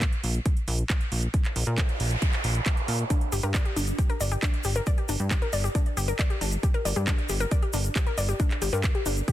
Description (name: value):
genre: uplifting trance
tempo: 136 BPM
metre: 4/4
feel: straight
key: unclear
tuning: A4 = 441 Hz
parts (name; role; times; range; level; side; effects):
- plucky analog bass; bass; 0.0-9.2 s; G1 to Bb2; -27 LUFS; equal; sidechain pumping
- electronic kick drum; drums; 0.0-9.3 s; none; -25 LUFS; equal; none
- house drum kit; drums; 0.0-9.3 s; handclaps, hi-hat; -33 LUFS; right 2 dB; none
- noise sweep; sound effects; 1.5-3.1 s; none; -34 LUFS; right 3 dB; none
- wide unison pluck; arpeggios; 3.1-9.3 s; D4 to D5; -31 LUFS; left 3 dB; sidechain pumping, digital delay
- tube shaker; percussion; 3.1-9.3 s; none; -38 LUFS; left 4 dB; none
room: little or no reverb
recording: dense, heavily limited modern master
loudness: -24 LUFS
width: side -13 dB against mid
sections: 0.0-9.3 A section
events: noise sweep 1.5-3.1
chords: 0.0 N.C.; 3.1 G5